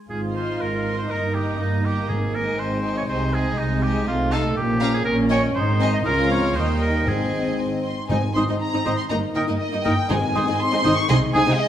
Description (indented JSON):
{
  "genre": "quick classical-period movement for symphony orchestra",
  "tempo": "120 BPM",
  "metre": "2/4",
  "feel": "straight",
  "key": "Ab major",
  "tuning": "A4 = 440 Hz",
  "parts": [
    { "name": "warm oboe", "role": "second line", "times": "0.1-11.4 s", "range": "Eb4 to Eb5", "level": "-26 LUFS", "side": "right 1 dB", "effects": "none" },
    { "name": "dark studio viola section", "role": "accompaniment", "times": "0.1-11.5 s", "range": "Ab3 to F4", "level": "-27 LUFS", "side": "right 1 dB", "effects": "none" },
    { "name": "warm French horn section", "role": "sustained chords", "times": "0.1-11.7 s", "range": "Eb3 to Eb4", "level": "-30 LUFS", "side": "left 2 dB", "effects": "none" },
    { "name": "dark chamber cello section", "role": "bass", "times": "0.1-11.5 s", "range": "Db2 to C3", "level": "-27 LUFS", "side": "right 1 dB", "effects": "none" },
    { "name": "dark chamber double bass section", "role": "bass", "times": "0.1-11.4 s", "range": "G1 to Eb2", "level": "-27 LUFS", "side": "right 1 dB", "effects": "none" },
    { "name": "warm chamber violin section", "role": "melody", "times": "0.3-11.7 s", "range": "Eb5 to Db6", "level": "-28 LUFS", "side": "left 2 dB", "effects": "none" },
    { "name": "warm chamber violin section", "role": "second line", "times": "0.3-11.5 s", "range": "Bb3 to F5", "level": "-30 LUFS", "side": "left 3 dB", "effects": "none" },
    { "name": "timpani", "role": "percussion", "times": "2.1-2.8, 7.1-10.8 s", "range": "Ab2", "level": "-30 LUFS", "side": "equal", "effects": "none" },
    { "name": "dark clarinet", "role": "second line", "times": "8.4-11.4 s", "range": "Eb4", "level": "-29 LUFS", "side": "equal", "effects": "none" },
    { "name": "mellow silver concert flute", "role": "second line", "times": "8.4-11.5 s", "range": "Eb6", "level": "-29 LUFS", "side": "equal", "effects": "none" }
  ],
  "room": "wet recital hall reverb, RT60 1.6 s",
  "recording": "none",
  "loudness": "-19 LUFS",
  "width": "side -10 dB against mid",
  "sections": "0.1-8.1 A section; 8.1-11.7 A section",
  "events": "none",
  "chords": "0.1 Ab; 1.1 Eb/G; 2.1 Ab; 3.1 Ab/C; 4.1 F7/C; 4.6 Bbm; 5.1 Eb7/Bb; 5.6 Ab; 6.1 Bbm/Db; 6.6 Eb; 7.1 Ab; 9.1 Eb/G; 10.1 Ab",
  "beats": "| 0.09 0.60 | 1.10 1.60 | 2.09 2.59 | 3.08 3.58 | 4.07 4.56 | 5.06 5.56 | 6.06 6.56 | 7.08 7.59 | 8.11 8.61 | 9.11 9.61 | 10.10 10.60 | 11.10 11.59"
}